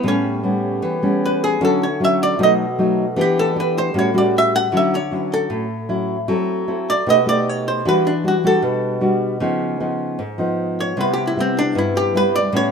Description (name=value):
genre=bossa nova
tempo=154 BPM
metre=4/4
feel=straight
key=D major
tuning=A4 = 444 Hz
part: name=archtop guitar, miked and amplified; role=melody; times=0.0-12.7 s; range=C4 to F#5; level=-19 LUFS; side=right 1 dB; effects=none
part: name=nylon-string guitar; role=accompaniment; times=0.0-12.7 s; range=G2 to A4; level=-18 LUFS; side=left 1 dB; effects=none
part: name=dark French horn section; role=sustained chords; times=0.0-4.7, 11.0-12.7 s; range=C3 to A4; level=-31 LUFS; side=right 1 dB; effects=none
room=light reverb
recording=minimal, uncompressed stereo recording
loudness=-16 LUFS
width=side -6 dB against mid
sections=0.0-4.7 A section; 4.7-12.7 A section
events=hollow-body jazz guitar solo 0.0-12.7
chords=0.0 A9; 1.6 Dmaj9; 2.4 B7; 3.2 Em7; 3.9 A13; 4.7 Dmaj9; 6.3 F#m7b5; 7.1 Baug7; 7.8 Em9; 9.4 C#9; 11.0 Cmaj7